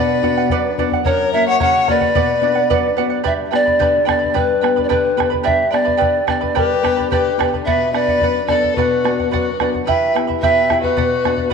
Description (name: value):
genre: andean folk, Andean ensemble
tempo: 109 BPM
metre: 2/4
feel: straight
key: unclear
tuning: A4 = 440 Hz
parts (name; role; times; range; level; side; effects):
- mellow hollow polished pan flute; melody; 0.0-11.5 s; B4 to F#5; -17 LUFS; equal; slapback echo
- rich violin; second line; 0.0-3.0, 6.6-11.5 s; F#4 to C#5; -24 LUFS; left 9 dB; none
- charango; accompaniment; 0.0-11.5 s; E4 to B5; -22 LUFS; right 11 dB; none
- nylon-string guitar; accompaniment; 0.0-11.5 s; F#2 to G4; -22 LUFS; left 8 dB; none
- bombo; percussion; 0.2-11.5 s; none; -24 LUFS; equal; none
room: wet plate reverb, RT60 2.6 s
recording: 1960s-style stereo with parts hard left and right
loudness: -14 LUFS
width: side -5 dB against mid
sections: 0.0-3.3 A section; 3.3-11.5 B section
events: none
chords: 0.0 Bm; 1.1 F#; 2.2 Bm; 3.3 G; 7.7 Bm; 9.9 Em; 11.0 Bm